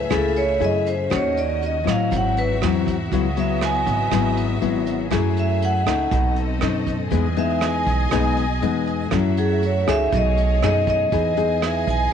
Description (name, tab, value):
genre	bossa nova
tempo	120 BPM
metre	4/4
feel	straight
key	E major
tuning	A4 = 444 Hz
part	vibraphone with medium hard mallets	melody	0.0-12.1 s	G#4 to G#5	-23 LUFS	right 2 dB	none
part	nylon-string guitar	accompaniment	0.0-12.1 s	G#2 to A4	-23 LUFS	left 8 dB	none
part	warm symphonic string section	sustained chords	0.0-12.1 s	A3 to G#5	-29 LUFS	left 2 dB	none
part	upright bass	bass	0.0-12.1 s	G#1 to A2	-23 LUFS	right 2 dB	none
part	vintage brush drum kit	drums	0.1-12.0 s	hi-hat, kick drum, rim click	-29 LUFS	right 7 dB	none
room	moderate echo chamber reverb, RT60 1.4 s, studio reverb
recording	1960s-style stereo with parts hard left and right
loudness	-18 LUFS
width	side -8 dB against mid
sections	0.0-11.1 A section; 11.1-12.1 B section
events	vibraphone solo 0.0-11.1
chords	0.0 F#m9; 1.1 D#m7b5; 2.1 G#aug7; 3.1 C#m11; 5.1 F#m9; 6.1 B7b9; 7.1 Emaj7; 9.1 F#m7; 10.1 B13; 11.1 Emaj7